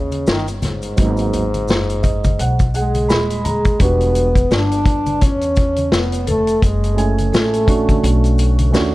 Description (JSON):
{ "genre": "hip hop, jazz-hop", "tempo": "85 BPM", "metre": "4/4", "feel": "swing 58% on 16ths", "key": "unclear", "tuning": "A4 = 441 Hz", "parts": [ { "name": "mellow French horn", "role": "melody", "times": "0.0-8.7 s", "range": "G#2 to D4", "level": "-21 LUFS", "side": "equal", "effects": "tape echo" }, { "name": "upright bass", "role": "bass", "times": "0.0-8.9 s", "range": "D#1 to E2", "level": "-19 LUFS", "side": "equal", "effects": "none" }, { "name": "vintage drum kit", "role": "drums", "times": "0.1-8.9 s", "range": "hi-hat, kick drum, snare drum", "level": "-18 LUFS", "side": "equal", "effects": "none" }, { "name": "congas and maracas", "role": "percussion", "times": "0.1-8.9 s", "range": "none", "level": "-28 LUFS", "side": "left 2 dB", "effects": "none" }, { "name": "dark upright piano", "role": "accompaniment", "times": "1.0-8.9 s", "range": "F#3 to B5", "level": "-21 LUFS", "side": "right 4 dB", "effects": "none" }, { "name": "vibraphone with soft mallets", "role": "second line", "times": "2.8-8.7 s", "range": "G#4 to D5", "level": "-25 LUFS", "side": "left 2 dB", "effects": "none" } ], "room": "small room ambience", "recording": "none", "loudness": "-14 LUFS", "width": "side -18 dB against mid", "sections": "0.0-3.8 A section; 3.8-8.9 B section", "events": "upright piano fill 1.7-3.8", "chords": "0.0 C#sus2; 1.0 G#m9; 3.8 Em9; 6.6 F#m9; 8.0 Bm9" }